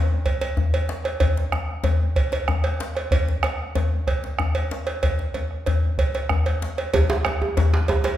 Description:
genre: west african traditional, West African drum ensemble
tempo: 126 BPM (dotted quarters)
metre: 12/8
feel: straight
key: none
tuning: none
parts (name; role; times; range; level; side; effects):
- bombo; percussion; 0.3-8.0 s; none; -26 LUFS; right 1 dB; none
- cowbell; percussion; 0.3-8.2 s; none; -27 LUFS; right 4 dB; none
- djembe; percussion; 0.4-8.2 s; none; -23 LUFS; left 2 dB; none
- djembe; percussion; 6.9-8.2 s; none; -23 LUFS; right 2 dB; none
room: wet recital hall reverb, RT60 1.4 s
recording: recorded in a church or concert hall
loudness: -20 LUFS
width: side -12 dB against mid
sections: 0.0-6.9 A section; 6.9-8.2 B section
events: none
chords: none

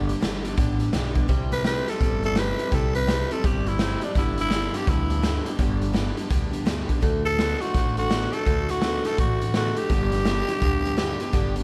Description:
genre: rockabilly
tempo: 167 BPM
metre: 4/4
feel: swing 63% on 8ths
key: G major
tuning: A4 = 440 Hz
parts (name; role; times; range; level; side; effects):
- picked steel-string acoustic guitar; accompaniment; 0.0-11.6 s; G2 to A4; -34 LUFS; equal; none
- electric guitar through a small old amp; riff; 0.0-11.6 s; G2 to B3; -34 LUFS; equal; none
- upright bass; bass; 0.0-11.6 s; G1 to D2; -30 LUFS; equal; none
- raw garage drum kit; drums; 0.1-11.6 s; hi-hat, kick drum, snare drum; -28 LUFS; equal; none
- growling tenor saxophone; melody; 1.5-11.6 s; D4 to B4; -29 LUFS; equal; none
room: light reverb, small room ambience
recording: none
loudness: -24 LUFS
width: mono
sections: 0.0-11.6 A section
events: none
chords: 0.0 G; 1.3 C; 4.2 G; 7.0 D; 9.9 G

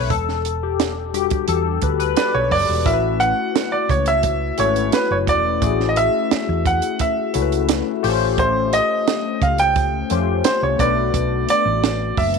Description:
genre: lush 1970s-style soul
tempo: 87 BPM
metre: 4/4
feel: straight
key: A major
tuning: A4 = 441 Hz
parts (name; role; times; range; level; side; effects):
- barky tine electric piano; accompaniment; 0.0-12.4 s; G3 to E5; -22 LUFS; left 16 dB; analog chorus
- hollow-body short-scale fingered electric bass; bass; 0.0-12.4 s; E1 to E#2; -23 LUFS; right 2 dB; none
- compact cocktail drum kit; drums; 0.1-12.4 s; hi-hat, kick drum, snare drum; -22 LUFS; right 8 dB; none
- clear baby grand piano; melody; 2.2-12.4 s; B4 to G5; -19 LUFS; right 2 dB; none
room: light reverb, small room reverb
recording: 1960s-style stereo with parts hard left and right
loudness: -16 LUFS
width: side -5 dB against mid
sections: 0.0-2.9 A section; 2.9-12.4 B section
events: tine electric piano solo 0.0-2.9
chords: 0.1 Em7; 2.9 A6; 8.0 A7alt; 10.8 Bm7

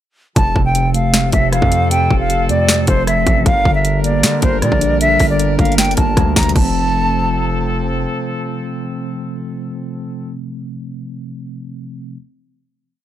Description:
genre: hip hop, trap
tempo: 155 BPM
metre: 4/4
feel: half-time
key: F major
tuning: A4 = 439 Hz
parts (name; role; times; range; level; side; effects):
- concert flute; melody; 0.4-7.7 s; C5 to Bb5; -18 LUFS; right 1 dB; none
- mellow tine electric piano; accompaniment; 0.4-12.2 s; C3 to D4; -20 LUFS; equal; medium stereo tremolo
- warm brass ensemble; sustained chords; 0.4-10.4 s; F3 to Bb4; -26 LUFS; left 1 dB; stereo widening
- distorted 808-style bass; bass; 0.4-8.1 s; F1 to D3; -19 LUFS; equal; distortion
- trap drum kit; drums; 0.4-6.6 s; crash cymbal, hi-hat, kick drum, rim click, snare drum, toms; -16 LUFS; equal; none
room: little or no reverb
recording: dry, gritty hardware recording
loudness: -13 LUFS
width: side -12 dB against mid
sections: 0.4-6.6 hook; 6.6-9.7 final chord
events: none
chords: 0.4 F; 3.5 Gm; 6.6 F

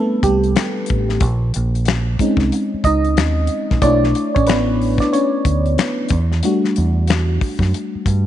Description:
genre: R&B, neo-soul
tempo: 92 BPM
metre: 4/4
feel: swing 61% on 16ths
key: unclear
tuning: A4 = 440 Hz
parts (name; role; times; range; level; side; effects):
- mellow FM electric piano; accompaniment; 0.0-8.3 s; G3 to D#5; -18 LUFS; equal; chorus
- deep dub fingered electric bass; bass; 0.2-8.3 s; A1 to G2; -18 LUFS; right 1 dB; none
- damped 70s drum kit; drums; 0.2-8.2 s; finger snaps, hi-hat, kick drum, snare drum; -20 LUFS; left 3 dB; none
room: light reverb, small room ambience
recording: 1960s-style stereo, nothing above 10.5 kHz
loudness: -15 LUFS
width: side -12 dB against mid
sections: 0.0-8.3 A section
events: FM electric piano solo 0.0-8.3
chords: 0.0 Am11; 1.2 A#m11; 3.8 Bm11; 6.1 Em11

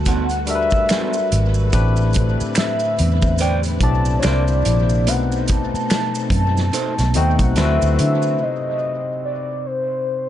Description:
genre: R&B, neo-soul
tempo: 72 BPM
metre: 4/4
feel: swing 58% on 16ths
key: unclear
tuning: A4 = 440 Hz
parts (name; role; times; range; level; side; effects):
- warm velvety synth lead; melody; 0.0-10.3 s; C5 to A5; -23 LUFS; left 1 dB; chorus, dub echo
- barky tine electric piano; accompaniment; 0.0-10.3 s; A2 to D5; -24 LUFS; left 5 dB; dub echo
- soft string machine; sustained chords; 0.0-8.4 s; B2 to B4; -30 LUFS; right 1 dB; ensemble chorus
- vintage muted fingered electric bass; bass; 0.0-8.4 s; Ab1 to D3; -18 LUFS; equal; none
- electric guitar through a small old amp; second line; 0.1-7.8 s; B3 to D5; -27 LUFS; right 7 dB; none
- warm soul drum kit; drums; 0.1-8.2 s; hi-hat, kick drum, snare drum; -22 LUFS; equal; dub echo
- maracas and finger snaps; percussion; 0.1-8.4 s; none; -31 LUFS; right 4 dB; dub echo
room: light reverb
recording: echo-heavy mix, nothing above 10.9 kHz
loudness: -16 LUFS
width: side -12 dB against mid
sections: 0.0-8.4 A section; 8.4-10.3 B section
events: none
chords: 0.0 Gmaj9; 1.7 Am11; 4.2 C9; 5.1 B7b9; 7.6 D13; 8.4 Cm

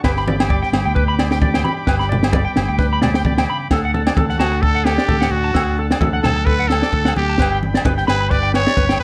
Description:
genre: highlife guitar band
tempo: 131 BPM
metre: 4/4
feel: swing 55% on 16ths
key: D major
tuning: A4 = 441 Hz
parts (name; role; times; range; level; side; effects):
- mellow electric guitar; accompaniment; 0.0-9.0 s; G2 to A4; -32 LUFS; equal; none
- combo organ; sustained chords; 0.0-9.0 s; F#5 to D6; -32 LUFS; equal; none
- clean electric guitar; arpeggios; 0.0-8.9 s; A4 to B5; -26 LUFS; equal; subtle chorus, slapback echo
- fingered electric bass; bass; 0.0-9.0 s; G1 to D2; -23 LUFS; equal; none
- compact cocktail drum kit; drums; 0.0-9.0 s; kick drum, snare drum; -22 LUFS; equal; none
- agogo bells; percussion; 0.0-9.0 s; none; -28 LUFS; equal; none
- congas; percussion; 0.1-8.9 s; none; -26 LUFS; equal; none
- growling trumpet; melody; 4.4-9.0 s; F#4 to D5; -22 LUFS; equal; none
room: light reverb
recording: none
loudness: -17 LUFS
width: mono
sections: 0.0-3.7 A section; 3.7-9.0 B section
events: trumpet solo 3.7-9.0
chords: 0.0 G; 3.7 D; 7.4 G

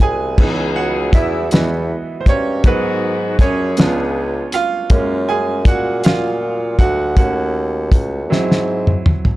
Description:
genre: slow six-eight R&B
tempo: 53 BPM (dotted quarters)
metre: 6/8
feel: straight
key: C# minor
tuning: A4 = 440 Hz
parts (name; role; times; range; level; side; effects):
- bright grand piano; accompaniment; 0.0-9.4 s; E3 to G#5; -20 LUFS; right 4 dB; none
- clear bassoon; bass; 0.0-9.0 s; B#1 to A#2; -20 LUFS; equal; none
- cloth-damped thuddy drum kit; drums; 0.0-9.4 s; crash cymbal, hi-hat, kick drum, snare drum, toms; -13 LUFS; equal; none
- clear horn section; stabs; 0.4-4.5 s; C#3 to G#4; -26 LUFS; left 4 dB; none
room: little or no reverb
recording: dark, warm production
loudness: -14 LUFS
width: side -17 dB against mid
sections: 0.4-9.4 A section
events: grand piano solo 0.4-9.4; drum fill 8.3-9.4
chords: 0.4 C#m7; 2.6 G#m7; 3.8 C#7b9; 4.9 F#maj7; 7.2 D#m7b5; 8.3 G#aug7

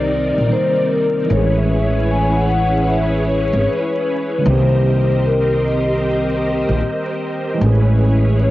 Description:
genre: lo-fi hip hop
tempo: 76 BPM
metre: 4/4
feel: swing 65% on 16ths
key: unclear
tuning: A4 = 439 Hz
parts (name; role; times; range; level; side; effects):
- vibraphone with soft mallets; melody; 0.0-8.5 s; Bb4 to G#5; -20 LUFS; left 3 dB; low-pass filter, cassette tape
- tine electric piano; accompaniment; 0.0-8.5 s; D3 to Bb4; -22 LUFS; right 3 dB; overdrive, slow stereo tremolo, cassette tape, low-pass filter
- string machine, violas; sustained chords; 0.0-8.5 s; C3 to Eb5; -21 LUFS; equal; ensemble chorus, low-pass filter, cassette tape
- upright bass; bass; 0.0-8.5 s; G#1 to C2; -17 LUFS; equal; tube saturation
room: light reverb, small room reverb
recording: home recording on cassette, vinyl crackle, nothing above 7.5 kHz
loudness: -14 LUFS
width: side -16 dB against mid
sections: 0.0-8.5 A section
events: none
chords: 0.0 Cm7; 1.3 Amaj7; 4.4 Cm7; 7.6 Amaj7

